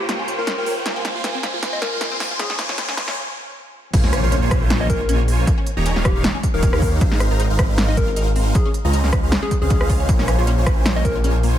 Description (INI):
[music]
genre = future bass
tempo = 156 BPM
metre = 4/4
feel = swing 54% on 16ths, half-time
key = Db lydian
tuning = A4 = 440 Hz
[part]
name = soft struck synth lead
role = melody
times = 0.0-11.4 s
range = G4 to Eb5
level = -28 LUFS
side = left 3 dB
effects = chorus, tremolo, sidechain pumping, digital delay
[part]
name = airy breathy pad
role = sustained chords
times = 0.0-3.9 s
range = Eb2 to G4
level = -41 LUFS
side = equal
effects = none
[part]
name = supersaw chords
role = riff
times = 0.0-11.6 s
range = Eb3 to C6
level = -26 LUFS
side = right 1 dB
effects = phaser, sidechain pumping
[part]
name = riser and impact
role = sound effects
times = 0.0-5.5 s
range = none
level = -28 LUFS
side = equal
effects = none
[part]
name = wide unison pluck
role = arpeggios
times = 0.1-11.5 s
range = Bb3 to Db5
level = -32 LUFS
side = left 3 dB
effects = flanger, sidechain pumping, dub echo
[part]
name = big-room dance drum kit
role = drums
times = 0.1-11.5 s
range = crash cymbal, hi-hat, rim click, snare drum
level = -25 LUFS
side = equal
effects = overdrive
[part]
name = wide detuned saw bass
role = bass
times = 3.9-11.6 s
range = Eb1 to Eb2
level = -19 LUFS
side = equal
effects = chorus, sidechain pumping
[part]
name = electronic kick drum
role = drums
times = 3.9-11.1 s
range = none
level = -20 LUFS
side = equal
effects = overdrive
[sound]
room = little or no reverb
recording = high-pass filter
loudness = -16 LUFS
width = side -11 dB against mid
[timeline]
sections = 0.0-3.9 A section; 3.9-11.6 B section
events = build-up 0.0-3.9; drum fill 0.0-3.2; riser 0.0-3.2; filter sweep on soft synth lead 0.0-3.9; filter sweep 0.0-3.9; break 3.2-3.9; drop 3.9-11.6; impact 3.9-5.5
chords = 0.0 Eb9; 0.9 Ab6; 2.4 Dbmaj7; 3.9 Bbm7; 5.5 Eb9; 7.0 Ab6; 8.6 Dbmaj7; 10.1 Bbm7